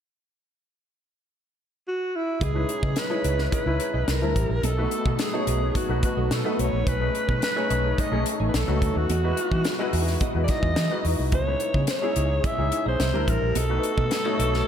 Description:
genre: polished 1980s jazz-funk pop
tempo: 108 BPM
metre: 4/4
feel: straight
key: C# minor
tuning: A4 = 440 Hz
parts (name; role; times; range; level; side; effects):
- raspy alto saxophone; melody; 1.9-14.7 s; E4 to E5; -28 LUFS; equal; slapback echo, ping-pong delay
- clean electric guitar; riff; 2.4-14.6 s; A3 to D#5; -35 LUFS; right 6 dB; analog chorus, slapback echo
- vintage muted fingered electric bass; bass; 2.4-14.6 s; A1 to E3; -26 LUFS; equal; none
- crisp fusion drum kit; drums; 2.4-14.6 s; hi-hat, kick drum, snare drum; -28 LUFS; equal; none
- warm grand piano; accompaniment; 2.5-14.7 s; G3 to C#5; -28 LUFS; left 2 dB; ensemble chorus, slapback echo
room: moderate lush hall reverb, RT60 1.7 s, small room reverb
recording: big arena sound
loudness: -22 LUFS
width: side -9 dB against mid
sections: 0.2-2.4 A section; 2.4-14.7 B section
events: none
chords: 0.2 N.C.; 2.4 C#m9; 4.1 C9; 4.6 B7; 6.9 B13; 8.5 B9; 9.1 Emaj9; 11.3 C#m9; 13.0 C9; 13.6 B7

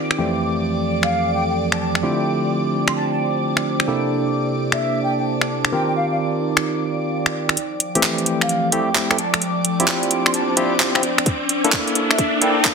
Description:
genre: UK garage, two-step garage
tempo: 130 BPM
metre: 4/4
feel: swing 66% on 16ths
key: F major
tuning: A4 = 440 Hz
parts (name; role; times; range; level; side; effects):
- airy breathy pad; sustained chords; 0.0-12.7 s; D5 to D6; -28 LUFS; right 1 dB; chorus, phaser, vintage 12-bit sampler grit, sidechain pumping
- barky tine electric piano; stabs; 0.0-12.7 s; F2 to Bb4; -22 LUFS; equal; medium stereo tremolo, low-pass filter, ping-pong delay
- warbly tape-like pad; texture; 0.0-12.7 s; F3 to A5; -26 LUFS; right 1 dB; chorus, built-in reverb, sidechain pumping
- garage drum kit; drums; 0.1-12.7 s; finger snaps, handclaps, hi-hat; -19 LUFS; equal; soft clipping on snare
- mellow concert flute; melody; 1.0-12.6 s; E5 to C6; -25 LUFS; equal; low-pass filter, ping-pong delay
- riser; sound effects; 9.3-12.7 s; none; -26 LUFS; equal; none
- electronic kick drum; drums; 11.3-12.7 s; none; -22 LUFS; equal; none
room: moderate digital room reverb, RT60 0.9 s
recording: dense, heavily limited modern master, high-pass filter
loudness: -17 LUFS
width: side -5 dB against mid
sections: 0.0-7.6 A section; 7.6-12.7 B section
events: build-up 7.6-12.7; filter sweep on tine electric piano 7.6-12.7; filter sweep on flute 7.6-12.7; riser 9.3-12.7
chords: 0.2 Fmaj9; 2.0 Dm11; 3.9 C13; 5.7 Eb69; 7.6 Fmaj9; 9.4 Dm11; 11.3 C13

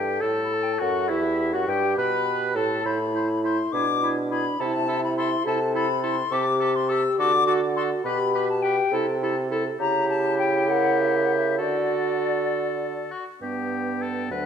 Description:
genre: quick classical-period movement for wind quintet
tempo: 68 BPM (dotted quarters)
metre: 6/8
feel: straight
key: G major from 6.3 s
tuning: A4 = 440 Hz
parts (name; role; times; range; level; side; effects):
- silver concert flute; melody; 0.0-14.5 s; D5 to E6; -27 LUFS; left 7 dB; none
- warm oboe; second line; 0.0-14.5 s; E4 to C5; -31 LUFS; left 5 dB; none
- bright clarinet; accompaniment; 0.0-14.5 s; B3 to B4; -30 LUFS; right 7 dB; none
- warm French horn; accompaniment; 0.0-14.5 s; F#3 to A#4; -27 LUFS; equal; none
- warm bassoon; bass; 0.0-14.5 s; D2 to D3; -28 LUFS; right 2 dB; none
room: wet recital hall reverb, RT60 1.5 s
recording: none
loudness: -21 LUFS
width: side -7 dB against mid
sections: 0.0-13.4 A section; 13.4-14.5 B section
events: none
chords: 0.2 F#m; 1.1 Em; 2.8 Am; 3.7 E7/B; 4.6 Am/C; 6.3 Am7/C; 7.2 D; 8.1 G/B; 8.9 Am/C; 9.8 C#dim7; 11.6 D; 13.4 G

